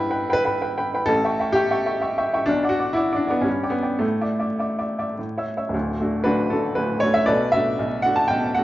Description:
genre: classical, romantic character piece for solo piano.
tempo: 101-132 BPM.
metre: 3/4.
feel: rubato.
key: D major.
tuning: A4 = 440 Hz.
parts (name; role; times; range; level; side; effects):
clear upright piano; solo; 0.0-8.6 s; D1 to E6; -20 LUFS; equal; none.
room: moderate recital hall reverb, RT60 1.9 s.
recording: vinyl crackle, nothing above 7.5 kHz.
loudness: -20 LUFS.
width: side -15 dB against mid.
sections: 0.0-5.7 A section; 5.7-8.6 B section.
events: none.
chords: 0.0 Em/G; 1.1 A7; 2.5 Bm; 3.5 G; 4.0 Asus4; 5.2 A; 5.7 D; 7.3 Bm7.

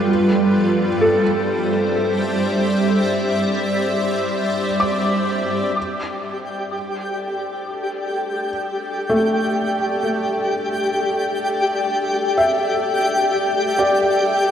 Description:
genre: ambient.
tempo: free time.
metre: none.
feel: none.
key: unclear.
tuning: A4 = 440 Hz.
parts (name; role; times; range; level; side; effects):
granular cloud pad; sustained chords; 0.0-14.5 s; G3 to G5; -21 LUFS; equal; built-in reverb, shimmer reverb.
felt-muted upright piano; arpeggios; 0.0-14.5 s; A3 to D6; -23 LUFS; left 1 dB; tape echo, shimmer reverb.
twinkling granular texture; texture; 6.1-14.5 s; G4 to G5; -20 LUFS; left 1 dB; built-in reverb, shimmer reverb.
room: wet lush hall reverb, RT60 2.6 s.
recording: dark, warm production.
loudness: -17 LUFS.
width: side -9 dB against mid.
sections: 0.0-5.8 A section; 5.8-14.5 B section.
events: fade-in on ambient pad 5.8-14.5.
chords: 0.1 Cadd9/G.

